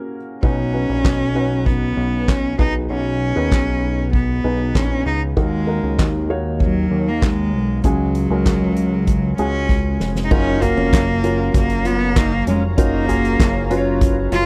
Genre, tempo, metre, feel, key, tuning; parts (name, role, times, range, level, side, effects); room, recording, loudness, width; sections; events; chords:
piano-driven pop; 97 BPM; 4/4; straight; F# major; A4 = 439 Hz
felt-muted upright piano; accompaniment; 0.0-14.5 s; B2 to C#5; -26 LUFS; equal
clear cello; melody; 0.4-14.5 s; F#3 to E#4; -24 LUFS; equal
fat analog bass; bass; 0.4-14.5 s; E#1 to D#2; -24 LUFS; equal
soft-mallet drum kit; drums; 0.4-14.5 s; crash cymbal, handclaps, hi-hat, kick drum, snare drum, toms; -21 LUFS; equal
warm analog pad; sustained chords; 10.3-14.5 s; F#3 to A#5; -33 LUFS; equal; chorus, tremolo
fingerpicked steel-string acoustic guitar; riff; 10.3-14.5 s; C#4 to E#4; -27 LUFS; equal
light reverb; dry, close 1970s-style studio recording; -18 LUFS; mono
0.0-10.3 A section; 10.3-14.5 B section
drum fill 9.7-10.3
0.4 Badd9; 2.6 G#m/B; 5.4 D#m; 7.8 C#sus4; 10.3 F#maj7